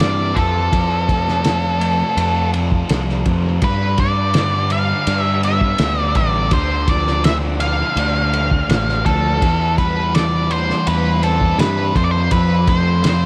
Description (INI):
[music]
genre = psychedelic rock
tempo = 83 BPM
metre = 4/4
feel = straight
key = unclear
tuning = A4 = 438 Hz
[part]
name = octave-fuzz lead guitar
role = melody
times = 0.0-13.3 s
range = A4 to F5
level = -22 LUFS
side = equal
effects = distortion, dub echo
[part]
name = thick fuzz guitar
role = riff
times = 0.0-13.3 s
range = G2 to F4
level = -25 LUFS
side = equal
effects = distortion, phaser, dub echo
[part]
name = growling picked electric bass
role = bass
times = 0.0-13.3 s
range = A1 to G2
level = -22 LUFS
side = equal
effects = overdrive
[part]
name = cloth-damped thuddy drum kit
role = drums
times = 0.0-13.2 s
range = kick drum, ride cymbal, snare drum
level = -23 LUFS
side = equal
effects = none
[sound]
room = light reverb, small room ambience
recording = echo-heavy mix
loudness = -17 LUFS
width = mono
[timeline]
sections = 0.0-13.3 A section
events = none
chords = 0.4 F; 3.6 G; 6.5 Dm; 9.4 C/E; 12.0 F